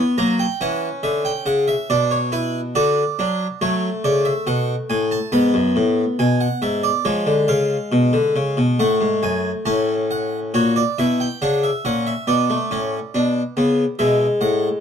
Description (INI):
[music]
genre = classical, baroque-style 3-part fugue for harpsichord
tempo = 70 BPM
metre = 4/4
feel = straight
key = unclear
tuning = A4 = 440 Hz
[part]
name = harpsichord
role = solo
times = 0.0-14.8 s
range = F#2 to B5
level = -17 LUFS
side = equal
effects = none
[sound]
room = light reverb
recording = dark, warm production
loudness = -17 LUFS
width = side -7 dB against mid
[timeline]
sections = 0.0-10.5 A section; 10.5-14.8 B section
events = none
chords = 0.2 F#7; 1.9 Bm; 3.6 F#m; 5.3 G#m7b5; 7.1 C#7; 8.8 F#m; 10.5 F#7/A#; 12.3 Bm; 14.0 E